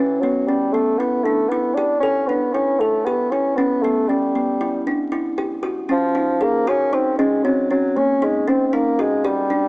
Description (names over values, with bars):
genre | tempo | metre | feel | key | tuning
contemporary instrumental, contemporary | 116 BPM | 7/4 | straight | unclear | A4 = 439 Hz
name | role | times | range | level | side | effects
dark bassoon | melody | 0.0-9.7 s | E3 to D4 | -19 LUFS | equal | tape echo
kalimba | arpeggios | 0.0-9.7 s | A#3 to A4 | -20 LUFS | equal | tape echo
room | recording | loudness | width
wet spring reverb, RT60 1.1 s | echo-heavy mix, vinyl crackle, small speaker sound | -17 LUFS | side -26 dB against mid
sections
0.0-9.7 A section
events
none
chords
0.0 Em; 5.6 F#sus2